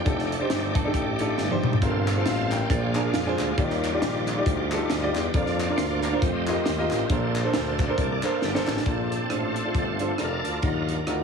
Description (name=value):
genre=uptempo gospel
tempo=136 BPM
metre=4/4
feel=swing 59% on 8ths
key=Bb major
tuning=A4 = 441 Hz
part: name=warm baby grand piano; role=accompaniment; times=0.0-11.2 s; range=G2 to G5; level=-27 LUFS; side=equal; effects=none
part: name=bright tonewheel organ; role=sustained chords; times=0.0-11.2 s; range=Gb3 to A5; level=-31 LUFS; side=right 2 dB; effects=fast rotary speaker, overdrive, chorus vibrato
part: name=warm tuba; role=bass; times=0.1-11.2 s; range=F1 to F2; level=-29 LUFS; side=left 1 dB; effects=none
part: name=crisp fusion drum kit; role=drums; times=0.1-11.2 s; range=hi-hat, kick drum, rim click, snare drum, toms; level=-28 LUFS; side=equal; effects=none
part: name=clean electric guitar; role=second line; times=0.8-6.9 s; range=Ab3 to D5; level=-34 LUFS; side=right 8 dB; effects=phaser
part: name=group handclap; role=percussion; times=2.1-8.8 s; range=none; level=-38 LUFS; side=left 3 dB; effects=none
room=light reverb, small room ambience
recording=heavily compressed radio sound, multiband compression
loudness=-22 LUFS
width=side -6 dB against mid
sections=0.0-8.9 A section; 8.9-11.2 B section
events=drum fill 1.4-1.8, 8.4-8.9; tonewheel organ fill 4.7-5.3, 7.5-8.9; tonewheel organ solo 8.9-11.2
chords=0.1 F13; 1.8 Gm11; 2.7 Bb7; 3.6 Ebmaj9; 5.3 Bb/F; 6.2 F9sus4; 7.1 Bbmaj9; 8.9 Bbmaj7; 10.6 Ebmadd9